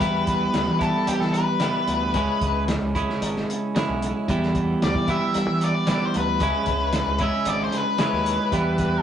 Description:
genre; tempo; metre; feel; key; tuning
psychedelic rock; 113 BPM; 4/4; straight; unclear; A4 = 440 Hz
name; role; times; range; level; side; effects
octave-fuzz lead guitar; melody; 0.0-9.0 s; G4 to E5; -25 LUFS; left 3 dB; distortion
twelve-string electric guitar; riff; 0.0-9.0 s; C#3 to E4; -24 LUFS; right 2 dB; none
fuzz fingered electric bass; bass; 0.0-9.0 s; G#1 to E3; -28 LUFS; equal; overdrive
cloth-damped thuddy drum kit; drums; 0.0-8.9 s; hi-hat, kick drum, snare drum; -28 LUFS; equal; none
room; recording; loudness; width
moderate small room reverb, RT60 0.5 s; rough rehearsal-room recording, nothing above 10.9 kHz; -20 LUFS; side -9 dB against mid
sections
0.0-9.0 A section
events
lead electric guitar solo 0.0-9.0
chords
0.0 Em; 2.2 C#m; 4.3 Em; 6.4 C#m; 8.5 Em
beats
| 0.01 0.55 1.08 1.62 | 2.15 2.69 3.22 3.75 | 4.28 4.81 5.34 5.88 | 6.41 6.94 7.46 7.99 | 8.52

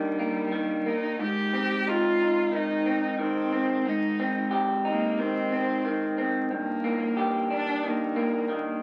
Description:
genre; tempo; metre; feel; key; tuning
acoustic folk-pop ballad; 90 BPM; 4/4; straight; unclear; A4 = 439 Hz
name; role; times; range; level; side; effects
rich cello; melody; 0.0-8.8 s; G3 to G4; -31 LUFS; equal; none
electric guitar through a small old amp; accompaniment; 0.0-8.8 s; G2 to G4; -29 LUFS; equal; none
room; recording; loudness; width
wet studio reverb, RT60 0.8 s; very old 78 rpm record, vinyl crackle; -27 LUFS; mono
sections
0.0-8.8 A section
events
none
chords
0.0 Ebmaj7; 1.2 Abmaj7; 6.5 Ebmaj7/G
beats
0.51 | 1.18 1.85 2.51 3.18 | 3.84 4.51 5.17 5.83 | 6.50 7.16 7.82 8.48

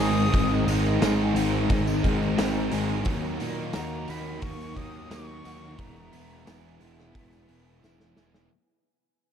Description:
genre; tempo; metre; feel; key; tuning
rock, shoegaze and dream pop; 88 BPM; 4/4; straight; E lydian; A4 = 441 Hz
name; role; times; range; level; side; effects
breathy bright jazz flute; melody; 0.0-6.8 s; A#5 to D#6; -36 LUFS; left 4 dB; analog delay
ethereal airy pad; sustained chords; 0.0-8.5 s; A#3 to A#5; -36 LUFS; equal; none
electric guitar through a small old amp; arpeggios; 0.0-8.5 s; D#3 to G#4; -36 LUFS; equal; ensemble chorus, analog delay
distorted electric guitar; riff; 0.0-8.5 s; G#2 to E4; -33 LUFS; right 1 dB; distortion
overdriven electric guitar; riff; 0.0-8.5 s; G#2 to E4; -32 LUFS; right 12 dB; reverse reverb
thick fuzz guitar; riff; 0.0-8.5 s; E2 to D#4; -31 LUFS; left 9 dB; distortion, analog chorus
fuzz picked electric bass; bass; 0.0-8.5 s; E1 to A#2; -30 LUFS; equal; overdrive
loose indie drum kit; drums; 0.0-8.5 s; hi-hat, kick drum, snare drum; -29 LUFS; equal; none
tambourine; percussion; 0.5-8.4 s; none; -48 LUFS; right 8 dB; none
room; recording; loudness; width
studio reverb; dark, warm production; -23 LUFS; side -8 dB against mid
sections
0.0-8.5 A section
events
fade-out 0.0-8.5; drum fill 7.8-8.5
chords
0.0 G#; 3.1 D#m; 5.8 E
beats
| 0.33 1.01 1.69 2.37 | 3.06 3.74 4.42 5.10 | 5.78 6.46 7.15 7.83

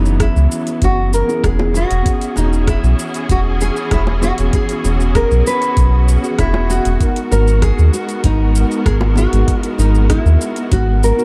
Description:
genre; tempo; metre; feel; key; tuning
sunset chillout; 97 BPM; 4/4; straight; unclear; A4 = 440 Hz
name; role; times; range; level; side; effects
nylon-string guitar; melody; 0.0-11.2 s; D#4 to B4; -23 LUFS; equal; delay
mellow tine electric piano; accompaniment; 0.0-11.2 s; E3 to D#5; -25 LUFS; equal; delay
rich symphonic string section; sustained chords; 0.0-11.2 s; E3 to A#4; -28 LUFS; equal; none
round analog bass; bass; 0.0-11.1 s; E1 to D#2; -16 LUFS; equal; tube saturation
deep house drum kit; drums; 0.1-11.2 s; hi-hat, rim click, shaker; -28 LUFS; equal; overdrive, small room ambience
electronic kick drum; drums; 0.2-10.8 s; none; -20 LUFS; equal; small room ambience
bongos; percussion; 1.6-9.9 s; none; -28 LUFS; equal; none
room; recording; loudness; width
light reverb, digital ambience; dark, warm production; -15 LUFS; mono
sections
0.0-11.2 A section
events
none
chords
0.0 E69; 7.0 G#m9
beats
0.20 0.82 1.44 | 2.06 2.67 3.29 3.91 | 4.53 5.15 5.77 6.39 | 7.00 7.62 8.24 8.86 | 9.48 10.10 10.72

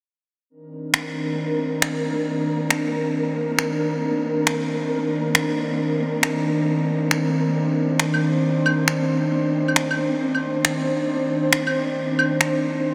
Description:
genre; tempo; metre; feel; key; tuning
future garage; 136 BPM; 4/4; swing 64% on 16ths; C minor; A4 = 444 Hz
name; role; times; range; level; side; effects
airy breathy pad; sustained chords; 0.7-12.9 s; Eb3 to C5; -24 LUFS; equal; chorus
flickering grainy texture; texture; 0.9-12.9 s; Bb3 to Bb4; -34 LUFS; equal; none
electronic finger snaps and claves; drums; 0.9-12.5 s; none; -28 LUFS; equal; overdrive, small room ambience
room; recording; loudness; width
wet huge ambient reverb, RT60 8.5 s; dreamy mix soaked in reverb; -22 LUFS; mono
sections
0.5-12.9 A section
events
none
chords
0.5 Cm9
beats
| 0.50 0.94 1.38 1.82 | 2.26 2.70 3.14 3.58 | 4.03 4.47 4.91 5.35 | 5.79 6.23 6.67 7.11 | 7.55 8.00 8.44 8.88 | 9.32 9.76 10.20 10.64 | 11.08 11.53 11.97 12.41 | 12.85

